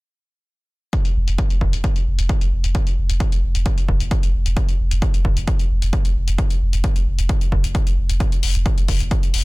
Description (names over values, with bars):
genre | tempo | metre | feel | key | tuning
driving peak-time techno | 132 BPM | 4/4 | straight | unclear | A4 = 440 Hz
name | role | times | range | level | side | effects
electronic hi-hat | drums | 0.9-9.4 s | none | -30 LUFS | left 6 dB | sidechain pumping on hats, low-pass filter on hats, low-pass filter on room
electronic kick drum | drums | 0.9-9.2 s | none | -19 LUFS | equal | none
saturated sub bass | bass | 1.2-9.4 s | F1 | -20 LUFS | equal | overdrive, sidechain pumping, low-pass filter
room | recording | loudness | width
little or no reverb | dense, heavily limited modern master | -17 LUFS | side -24 dB against mid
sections
0.9-9.4 A section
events
none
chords
none